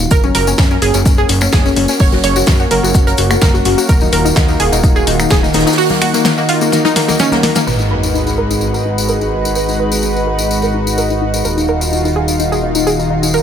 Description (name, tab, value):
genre	progressive house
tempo	127 BPM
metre	4/4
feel	straight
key	unclear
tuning	A4 = 440 Hz
part	lush unison pad	sustained chords	0.0-13.4 s	Eb3 to Cb5	-17 LUFS	equal	chorus, sidechain pumping
part	fat analog bass	bass	0.0-13.4 s	Eb1 to Gb2	-19 LUFS	equal	sidechain pumping
part	analog pluck	arpeggios	0.1-13.4 s	Bb3 to Db5	-17 LUFS	left 1 dB	chorus, vintage 12-bit sampler grit, sidechain pumping, digital delay
part	electronic kick drum	drums	0.1-5.4 s	none	-12 LUFS	equal	none
part	open jazz drum kit	drums	0.1-7.7 s	hi-hat, shaker, snare drum	-24 LUFS	right 1 dB	sidechain pumping on hats, high-pass filter on hats, high-pass filter on snare, sidechain pumping on perc, high-pass filter on perc, high-pass filter on room
part	tambourine	percussion	0.1-13.4 s	none	-23 LUFS	left 3 dB	none
part	congas and bongos	percussion	0.2-7.5 s	none	-25 LUFS	left 4 dB	sidechain pumping on perc
part	deep house drum kit	drums	0.3-7.8 s	crash cymbal, finger snaps, hi-hat, snare drum	-19 LUFS	equal	sidechain pumping on hats, low-pass filter on hats, low-pass filter on snare, sidechain pumping on cymbals, low-pass filter on cymbals, low-pass filter on room
part	sub drop	sound effects	7.7-9.6 s	none	-22 LUFS	equal	none
room	light reverb, studio reverb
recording	none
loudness	-11 LUFS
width	side -8 dB against mid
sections	0.0-7.7 A section; 7.7-13.4 B section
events	filter sweep on analog synth pad 0.0-7.7; drum fill 6.7-7.7; band accent 7.6; impact 7.7-9.6; filter sweep on synth pluck 7.7-13.4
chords	0.1 Gb; 3.9 Ebmadd9; 7.7 Abm7; 11.4 Ebmadd9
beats	| 0.11 0.58 1.06 1.53 | 2.00 2.47 2.95 3.42 | 3.89 4.36 4.84 5.31 | 5.78 6.25 6.73 7.20 | 7.67 8.14 8.62 9.09 | 9.56 10.03 10.51 10.98 | 11.45 11.92 12.39 12.87 | 13.34